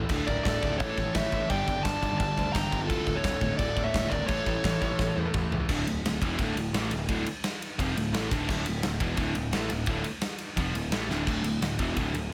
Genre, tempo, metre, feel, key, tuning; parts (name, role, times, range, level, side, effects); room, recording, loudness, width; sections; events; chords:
heavy metal; 172 BPM; 4/4; straight; D harmonic minor; A4 = 440 Hz
overdriven electric guitar; riff; 0.0-12.3 s; D2 to A3; -37 LUFS; equal
sludgy distorted guitar; riff; 0.0-12.3 s; D2 to A3; -38 LUFS; equal
sludgy distorted guitar; riff; 0.0-12.3 s; D2 to A3; -38 LUFS; equal
overdriven picked electric bass; bass; 0.0-12.3 s; D1 to E2; -36 LUFS; equal
big rock drum kit; drums; 0.1-12.2 s; crash cymbal, kick drum, ride cymbal, snare drum, toms; -33 LUFS; equal
dark smooth lead guitar; melody; 0.3-5.3 s; A4 to Bb5; -34 LUFS; equal; overdrive
high-gain lead guitar; second line; 0.3-5.3 s; F4 to G5; -40 LUFS; equal; distortion
little or no reverb; -29 LUFS; mono
0.0-5.7 A section; 5.7-12.3 B section
drum fill 5.0-5.7, 11.1
0.1 D5; 0.8 A; 1.5 G5; 2.9 D5; 4.3 A; 5.7 Dm